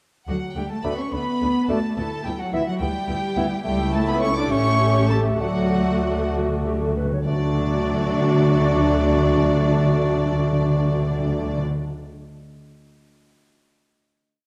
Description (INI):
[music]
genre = quick classical-period movement for symphony orchestra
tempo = 63-72 BPM (dotted quarters)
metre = 6/8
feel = rubato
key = D major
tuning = A4 = 440 Hz
[part]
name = rich chamber violin section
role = melody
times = 0.3-11.6 s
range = D5 to D6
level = -34 LUFS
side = equal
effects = none
[part]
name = dark chamber violin section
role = second line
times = 0.3-11.6 s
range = D4 to D5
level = -35 LUFS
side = equal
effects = none
[part]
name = silver concert flute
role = second line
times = 0.3-11.6 s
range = F#4 to D6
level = -32 LUFS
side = equal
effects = none
[part]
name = warm studio viola section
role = accompaniment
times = 0.3-11.6 s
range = F#3 to G4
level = -32 LUFS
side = equal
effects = none
[part]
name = mellow French horn section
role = sustained chords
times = 0.3-11.6 s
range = E3 to D4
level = -31 LUFS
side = equal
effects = none
[part]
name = clear chamber double bass section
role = bass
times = 0.3-11.6 s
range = A1 to D2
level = -28 LUFS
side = equal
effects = none
[part]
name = rich chamber cello section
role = bass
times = 0.3-11.6 s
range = D3 to D4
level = -30 LUFS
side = equal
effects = none
[part]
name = timpani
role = percussion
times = 0.3-2.8, 5.4-11.7 s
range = D3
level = -27 LUFS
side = equal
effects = none
[part]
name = dark clarinet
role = second line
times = 0.8-11.6 s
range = E4 to C#5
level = -33 LUFS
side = equal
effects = none
[part]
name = dark cor anglais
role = second line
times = 0.8-11.6 s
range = D5 to E5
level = -34 LUFS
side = equal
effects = none
[part]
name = warm bassoon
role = accompaniment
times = 0.8-11.6 s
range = A3 to B3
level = -32 LUFS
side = equal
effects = none
[sound]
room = wet scoring stage reverb, RT60 1.6 s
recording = dark, warm production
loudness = -21 LUFS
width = mono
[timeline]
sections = 0.3-7.3 A section; 7.3-10.9 final chord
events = slowing down 2.8-7.3; timpani fill 5.4-7.3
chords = 0.3 D; 2.0 Em7/D; 3.7 A7/C#; 4.5 A7; 5.4 D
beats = | 0.28 1.13 | 1.98 2.82 | 3.65 4.51 | 5.40 6.33 | 7.26 8.16 | 9.05 9.96